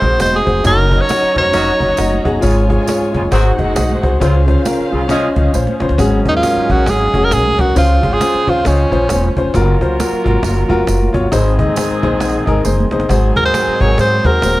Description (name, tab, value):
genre	uptempo 1960s-style soul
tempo	135 BPM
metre	4/4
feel	swing 60% on 8ths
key	unclear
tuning	A4 = 440 Hz
part	warm tenor saxophone	melody	0.0-2.2, 6.3-9.4, 13.4-14.6 s	Db4 to Db5	-15 LUFS	right 1 dB	tape echo
part	clear horn section	second line	0.0-14.6 s	Db3 to C5	-26 LUFS	right 2 dB	tape echo
part	warm studio violin section	second line	0.0-6.0, 13.1-14.6 s	Db4 to Bb5	-26 LUFS	right 1 dB	none
part	warm concert grand piano	accompaniment	0.0-14.6 s	Ab2 to C6	-17 LUFS	left 2 dB	none
part	percussive tonewheel organ	sustained chords	0.0-14.6 s	Eb3 to C5	-26 LUFS	right 2 dB	overdrive, chorus vibrato, slow rotary speaker
part	upright bass	bass	0.0-14.6 s	Eb1 to Ab2	-16 LUFS	equal	none
part	cajon	drums	0.0-14.5 s	none	-23 LUFS	equal	none
part	congas	percussion	0.0-14.6 s	none	-28 LUFS	right 6 dB	none
part	tambourine	percussion	0.2-14.6 s	none	-31 LUFS	right 8 dB	none
room	light reverb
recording	none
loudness	-11 LUFS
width	side -17 dB against mid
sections	0.0-6.0 A section; 6.0-14.6 B section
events	drum fill 5.5-6.0, 12.7-13.1; grand piano fill 11.8-13.1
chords	0.0 Ab7; 0.6 Ebm7; 2.4 Db/Ab; 3.3 Ab7; 4.2 Dbmaj7; 6.0 Ab7sus4; 7.8 Dbmaj7; 9.5 Gbmaj7; 11.3 Ab; 13.1 Ab7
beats	0.20 | 0.65 1.09 1.54 1.98 | 2.43 2.88 3.32 3.77 | 4.21 4.66 5.10 5.54 | 5.99 6.43 6.88 7.33 | 7.77 8.21 8.66 9.10 | 9.55 9.99 10.44 10.88 | 11.32 11.77 12.21 12.66 | 13.10 13.54 13.99 14.43